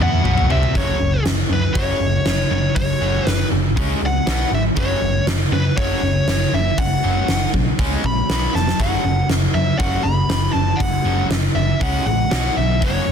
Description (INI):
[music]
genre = hard rock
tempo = 119 BPM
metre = 4/4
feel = straight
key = unclear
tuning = A4 = 439 Hz
[part]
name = biting lead guitar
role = melody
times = 0.0-13.1 s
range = B4 to B5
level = -23 LUFS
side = left 1 dB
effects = overdrive
[part]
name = distorted electric guitar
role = riff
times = 0.0-13.1 s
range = F#2 to E4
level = -22 LUFS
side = equal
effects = distortion
[part]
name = picked electric bass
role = bass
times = 0.0-13.1 s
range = E#1 to F#2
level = -22 LUFS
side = equal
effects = none
[part]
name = huge arena drum kit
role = drums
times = 0.0-12.9 s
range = hi-hat, kick drum, snare drum, toms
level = -21 LUFS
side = equal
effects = soft clipping on snare
[sound]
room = light reverb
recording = dense, heavily limited modern master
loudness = -16 LUFS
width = side -7 dB against mid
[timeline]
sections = 0.7-13.1 A section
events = drum fill 0.0-0.7, 8.5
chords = 0.0 N.C.; 0.7 F#5; 3.8 C#5; 4.3 B5; 4.8 F#5; 7.8 C#5; 8.3 B5; 8.8 F#5; 11.8 C#5; 12.3 B5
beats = 0.24 | 0.74 1.25 1.75 2.25 | 2.76 3.26 3.76 4.26 | 4.77 5.27 5.77 6.28 | 6.78 7.28 7.79 8.29 | 8.79 9.29 9.80 10.30 | 10.80 11.31 11.81 12.31 | 12.82